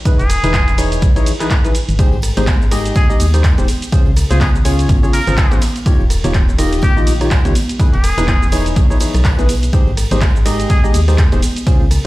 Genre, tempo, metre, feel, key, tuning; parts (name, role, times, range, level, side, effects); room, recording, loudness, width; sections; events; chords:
piano house; 124 BPM; 4/4; swing 58% on 16ths; A4 = 439 Hz
percussive organ stab; riff; 0.1-11.9 s; Db3 to Eb5; -20 LUFS; left 1 dB; lush chorus, sidechain pumping, ping-pong delay
electronic kick drum; drums; 0.1-11.8 s; -14 LUFS; equal
punchy analog drum machine; drums; 0.1-12.0 s; handclaps, hi-hat, ride cymbal, rim click, shaker; -24 LUFS; right 1 dB
trumpet with straight mute; melody; 0.2-10.8 s; G4 to Bb4; -23 LUFS; equal; vintage 12-bit sampler grit, ping-pong delay
organ-like FM bass; bass; 0.2-12.0 s; Eb1 to Eb2; -16 LUFS; equal; sidechain pumping
tambourine and congas; percussion; 2.0-12.0 s; -26 LUFS; right 2 dB
digital ambience; played on a big sound system in a bare room, large studio reverb; -11 LUFS; side -18 dB against mid
0.0-12.1 A section
0.1 Emaj7; 2.0 Abmaj7; 3.9 Dbmaj7; 5.6 Eb9; 7.8 Emaj7; 9.7 Abmaj7